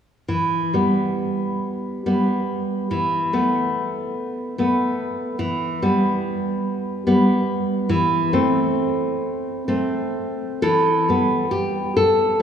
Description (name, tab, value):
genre	romantic piece for solo classical guitar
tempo	40-50 BPM (dotted quarters)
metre	6/8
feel	rubato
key	E minor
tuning	A4 = 440 Hz
part	nylon-string guitar	solo	0.3-12.4 s	E3 to A4	-19 LUFS	equal	none
room	wet church reverb, RT60 3.5 s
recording	recorded in a church or concert hall, small room ambience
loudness	-19 LUFS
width	side -8 dB against mid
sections	0.3-10.6 A section; 10.6-12.4 B section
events	none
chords	0.3 Em; 2.9 Esus4; 5.4 Em; 7.9 Am/E; 10.6 Em